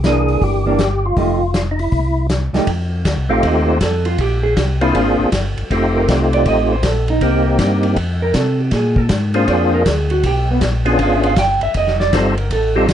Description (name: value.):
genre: soul jazz organ trio.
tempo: 159 BPM.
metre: 4/4.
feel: swing 64% on 8ths.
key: F mixolydian.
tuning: A4 = 440 Hz.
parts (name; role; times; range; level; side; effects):
hollow-body jazz guitar; accompaniment; 0.0-12.9 s; E3 to G5; -19 LUFS; right 3 dB; none.
mellow tonewheel organ; bass; 0.0-12.9 s; F1 to C3; -18 LUFS; equal; chorus vibrato, slow rotary speaker.
vintage drum kit; drums; 0.0-12.9 s; hi-hat, kick drum, ride cymbal, snare drum; -21 LUFS; equal; none.
percussive tonewheel organ; melody; 0.1-12.9 s; G3 to A4; -17 LUFS; left 1 dB; slow rotary speaker, overdrive, chorus vibrato.
room: light reverb.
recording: nothing above 10.5 kHz.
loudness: -14 LUFS.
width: side -10 dB against mid.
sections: 0.0-2.7 A section; 2.7-12.9 B section.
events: hollow-body jazz guitar solo 2.7-12.9.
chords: 0.0 C9; 1.2 F9; 1.9 C; 2.7 F9; 4.2 Bb9; 5.7 F9; 7.2 Cm7; 8.0 F5; 8.7 Bb9; 10.2 Bdim7; 11.8 F9.